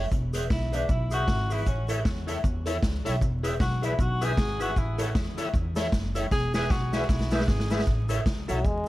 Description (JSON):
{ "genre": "ska", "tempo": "155 BPM", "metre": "4/4", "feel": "swing 59% on 8ths", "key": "A major", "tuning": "A4 = 439 Hz", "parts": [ { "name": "electric guitar at the edge of break-up", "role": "accompaniment", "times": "0.0-8.6 s", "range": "G#4 to E5", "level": "-34 LUFS", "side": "right 1 dB", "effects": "phaser, tape echo" }, { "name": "upright bass", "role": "bass", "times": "0.0-8.9 s", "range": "E1 to E2", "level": "-29 LUFS", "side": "equal", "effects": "none" }, { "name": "street-band drum kit", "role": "drums", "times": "0.1-8.8 s", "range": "hi-hat, kick drum, snare drum", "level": "-28 LUFS", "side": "equal", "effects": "none" }, { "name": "cabasa", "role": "percussion", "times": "0.1-8.8 s", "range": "none", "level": "-50 LUFS", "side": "right 4 dB", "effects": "tape echo" }, { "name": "warm tenor saxophone", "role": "melody", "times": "0.5-7.9 s", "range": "C#4 to G#4", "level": "-33 LUFS", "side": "left 1 dB", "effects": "tape echo" }, { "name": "tonewheel organ", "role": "stabs", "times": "1.9-8.6 s", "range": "E4 to E5", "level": "-34 LUFS", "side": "left 3 dB", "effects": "overdrive, slow rotary speaker" }, { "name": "bright trombone", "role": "melody", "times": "8.5-8.9 s", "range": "F#3 to G#3", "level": "-29 LUFS", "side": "left 1 dB", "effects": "none" } ], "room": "little or no reverb", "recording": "vinyl crackle", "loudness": "-24 LUFS", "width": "side -17 dB against mid", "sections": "0.0-7.9 A section; 7.9-8.9 B section", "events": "tenor saxophone solo 0.0-7.9; drum fill 6.3-7.9", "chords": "0.1 E; 1.7 A; 3.2 E; 4.8 A; 6.3 E; 7.9 A" }